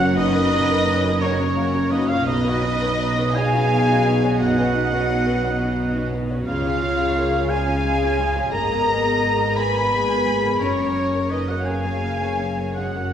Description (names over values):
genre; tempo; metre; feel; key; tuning
cinematic; 58 BPM (dotted quarters); 6/8; rubato; F# major; A4 = 437 Hz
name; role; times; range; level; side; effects
dark studio violin section; melody; 0.0-13.1 s; C#5 to B5; -27 LUFS; left 1 dB; none
clear oboe; second line; 0.0-13.1 s; C#5 to B5; -27 LUFS; right 2 dB; none
hollow concert flute; second line; 0.0-13.1 s; C#5 to B5; -30 LUFS; equal; none
rich studio violin section; second line; 0.0-13.1 s; A#4 to G#5; -31 LUFS; left 1 dB; none
felt-muted upright piano; accompaniment; 0.0-13.1 s; B1 to C#5; -26 LUFS; left 1 dB; none
warm chamber viola section; accompaniment; 0.0-13.1 s; G#3 to C#5; -29 LUFS; right 1 dB; none
mellow French horn section; sustained chords; 0.0-13.1 s; C#4 to B4; -26 LUFS; left 2 dB; none
concert harp; arpeggios; 0.0-13.1 s; F#2 to A#5; -32 LUFS; left 4 dB; none
dark studio double bass section; bass; 0.0-13.1 s; F#1 to C#2; -27 LUFS; right 2 dB; none
warm studio cello section; bass; 0.0-13.1 s; F#2 to C#3; -27 LUFS; right 1 dB; none
room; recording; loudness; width
wet scoring stage reverb, RT60 1.9 s; recorded in a church or concert hall; -18 LUFS; side -9 dB against mid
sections
0.0-13.1 A section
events
none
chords
0.0 F#; 2.3 Badd9; 6.5 C#; 8.5 G#madd9; 10.6 F#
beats
| 0.17 1.22 | 2.26 3.34 | 4.39 5.43 | 6.46 7.50 | 8.53 9.56 | 10.61 11.66 | 12.75